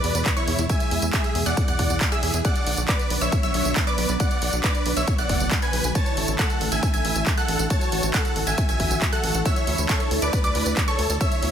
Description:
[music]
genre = uplifting trance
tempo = 137 BPM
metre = 4/4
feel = straight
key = B dorian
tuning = A4 = 440 Hz
[part]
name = supersaw chords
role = melody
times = 0.0-11.5 s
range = E4 to A5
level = -26 LUFS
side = equal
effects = cassette tape, sidechain pumping, tape echo
[part]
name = wide unison pluck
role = second line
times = 0.0-11.5 s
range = C#6 to A6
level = -33 LUFS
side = right 1 dB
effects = sidechain pumping, tape echo
[part]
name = analog string pad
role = sustained chords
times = 0.0-11.5 s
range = B2 to F#4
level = -29 LUFS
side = right 1 dB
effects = ensemble chorus, sidechain pumping
[part]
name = tight sequencer bass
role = bass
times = 0.0-11.5 s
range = F#1 to E2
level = -27 LUFS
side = equal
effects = sidechain pumping
[part]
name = big-room dance drum kit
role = drums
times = 0.0-11.5 s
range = handclaps, hi-hat, tambourine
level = -28 LUFS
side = right 1 dB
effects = studio reverb
[part]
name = electronic kick drum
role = drums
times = 0.3-11.3 s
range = none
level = -24 LUFS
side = equal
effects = studio reverb
[sound]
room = little or no reverb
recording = none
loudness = -20 LUFS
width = side -9 dB against mid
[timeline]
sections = 0.0-11.5 A section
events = none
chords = 0.0 E; 2.4 Bmadd9; 6.0 A; 9.5 Dsus2

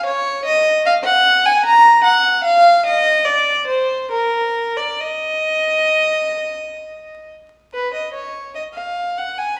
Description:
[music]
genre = classical, baroque-style suite movement for unaccompanied violin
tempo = 64-78 BPM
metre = 3/4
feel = rubato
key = Eb minor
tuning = A4 = 440 Hz
[part]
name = rich violin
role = solo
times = 0.0-9.6 s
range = Bb4 to Bb5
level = -16 LUFS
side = equal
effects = none
[sound]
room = wet recital hall reverb, RT60 1.3 s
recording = heard from further back in the room, vinyl crackle, small room reverb, faint mains hum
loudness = -16 LUFS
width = mono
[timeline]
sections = 0.0-7.7 A section; 7.7-9.6 A section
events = none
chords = none

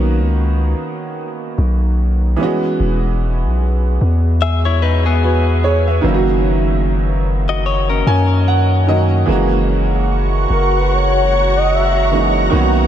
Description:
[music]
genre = R&B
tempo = 74 BPM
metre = 4/4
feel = swing 58% on 16ths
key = unclear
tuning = A4 = 441 Hz
[part]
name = warm grand piano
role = accompaniment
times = 0.0-12.9 s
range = D#3 to G#5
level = -19 LUFS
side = right 3 dB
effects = wide subtle chorus
[part]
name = long sustained 808-style bass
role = bass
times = 0.0-12.9 s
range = E1 to F#2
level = -15 LUFS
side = equal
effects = none
[part]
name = direct-recorded clean electric guitar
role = arpeggios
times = 4.4-9.1 s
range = B3 to E5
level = -22 LUFS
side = left 6 dB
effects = diffuse ambient delay
[part]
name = ethereal airy pad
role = sustained chords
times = 9.9-12.9 s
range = F#4 to C#6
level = -18 LUFS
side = equal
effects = ensemble chorus, built-in reverb
[part]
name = gliding portamento lead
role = melody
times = 10.5-12.4 s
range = A#4 to E5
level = -18 LUFS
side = equal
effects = chorus, diffuse ambient delay
[sound]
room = light reverb, digital ambience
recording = none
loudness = -13 LUFS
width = side -10 dB against mid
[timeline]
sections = 0.0-9.3 A section; 9.3-12.9 B section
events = grand piano fill 7.7-9.3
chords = 0.0 Bmaj7; 2.4 E6; 6.0 D#m7/F#; 9.3 F#7

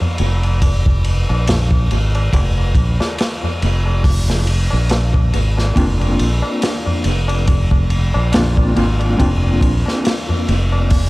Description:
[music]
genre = trip hop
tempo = 70 BPM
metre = 4/4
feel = swing 56% on 16ths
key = F dorian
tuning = A4 = 442 Hz
[part]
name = tabla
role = percussion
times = 0.0-11.1 s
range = none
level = -25 LUFS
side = left 1 dB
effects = analog delay
[part]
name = modern bright fingered electric bass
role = bass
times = 0.2-11.1 s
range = F1 to Bb1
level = -16 LUFS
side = equal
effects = none
[part]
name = crunchy breakbeat drum kit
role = drums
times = 0.2-11.1 s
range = hi-hat, kick drum, ride cymbal, snare drum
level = -18 LUFS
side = equal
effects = analog delay
[part]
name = mellow electric guitar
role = accompaniment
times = 5.8-11.1 s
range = Bb3 to F4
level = -20 LUFS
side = left 1 dB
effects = tremolo, tape echo
[sound]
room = small room reverb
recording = echo-heavy mix, vinyl crackle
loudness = -14 LUFS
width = side -21 dB against mid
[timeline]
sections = 0.0-11.1 A section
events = none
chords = 0.0 Fm; 5.8 Bbadd9/F

